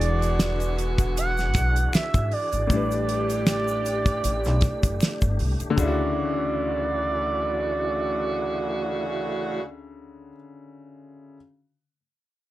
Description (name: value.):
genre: R&B, neo-soul.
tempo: 78 BPM.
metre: 4/4.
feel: swing 55% on 16ths.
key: D major.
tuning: A4 = 441 Hz.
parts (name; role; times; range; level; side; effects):
expressive portamento lead; melody; 0.0-9.6 s; D5 to F#5; -27 LUFS; right 3 dB; chorus.
clear upright piano; accompaniment; 0.0-11.4 s; A2 to B4; -31 LUFS; left 4 dB; none.
tonewheel organ; sustained chords; 0.0-9.6 s; E3 to G#4; -36 LUFS; equal; fast rotary speaker, chorus vibrato.
dark saxophone section; stabs; 0.0-9.6 s; C#3 to G4; -32 LUFS; right 2 dB; none.
upright bass; bass; 0.0-10.3 s; E1 to D2; -27 LUFS; equal; none.
damped 70s drum kit; drums; 0.0-6.0 s; hi-hat, kick drum, snare drum; -24 LUFS; equal; none.
egg shaker and finger snaps; percussion; 0.2-6.1 s; none; -39 LUFS; left 5 dB; none.
room: light reverb.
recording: none.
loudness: -22 LUFS.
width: side -15 dB against mid.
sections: 0.0-5.8 A section; 5.8-8.9 B section.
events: none.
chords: 0.0 E9; 2.7 A9sus4; 5.8 Dmaj9.